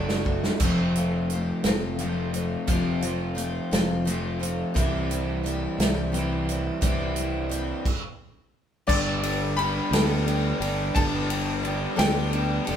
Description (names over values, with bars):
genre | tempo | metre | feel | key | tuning
folk rock and heartland rock | 58 BPM (dotted quarters) | 6/8 | straight | G major from 8.9 s | A4 = 439 Hz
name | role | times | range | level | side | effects
picked twelve-string acoustic guitar | accompaniment | 0.0-12.8 s | F2 to A4 | -29 LUFS | left 2 dB | none
crunchy overdriven guitar | riff | 0.0-12.8 s | F2 to G4 | -29 LUFS | right 1 dB | none
fingered electric bass | bass | 0.0-12.8 s | F1 to D2 | -30 LUFS | equal | none
natural country drum kit | drums | 0.1-12.8 s | crash cymbal, hi-hat, kick drum, ride cymbal, snare drum | -27 LUFS | right 1 dB | none
clear baby grand piano | melody | 8.9-12.7 s | D5 to B5 | -30 LUFS | left 3 dB | none
room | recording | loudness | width
wet stone room reverb, RT60 1.1 s | band playing live in one room | -23 LUFS | side -9 dB against mid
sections
0.0-8.9 A section; 8.9-12.8 B section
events
drum fill 0.0-0.6; stop 7.9-8.9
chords
0.0 Dadd9/F#; 0.6 F; 4.8 C; 8.9 Gadd9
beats
| 0.61 1.65 | 2.68 3.72 | 4.75 5.79 | 6.82 7.86 | 8.89 9.92 | 10.96 11.99